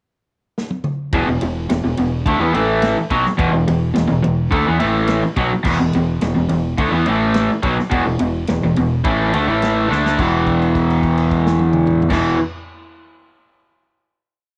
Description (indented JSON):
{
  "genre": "garage rock duo or trio",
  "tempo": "106 BPM",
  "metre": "4/4",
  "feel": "straight",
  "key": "unclear",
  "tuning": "A4 = 440 Hz",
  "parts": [
    { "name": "vintage drum kit", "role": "drums", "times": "0.6-12.2 s", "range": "crash cymbal, kick drum, ride cymbal, snare drum, toms", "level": "-27 LUFS", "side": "equal", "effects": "none" },
    { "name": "raw garage guitar", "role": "riff", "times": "1.1-12.4 s", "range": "E2 to D4", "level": "-18 LUFS", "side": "equal", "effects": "overdrive, cassette tape" },
    { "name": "fuzz fingered electric bass", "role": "bass", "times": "1.1-12.3 s", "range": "E1 to E2", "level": "-26 LUFS", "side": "equal", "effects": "overdrive" }
  ],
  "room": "small room ambience",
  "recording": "home recording on cassette",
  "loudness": "-17 LUFS",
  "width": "mono",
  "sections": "0.0-1.1 pickup bar; 1.1-10.2 riff; 10.2-12.4 final chord",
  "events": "drum fill 0.6-1.1, 9.9; held note 10.2-12.1",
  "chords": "0.0 N.C.; 1.1 E5"
}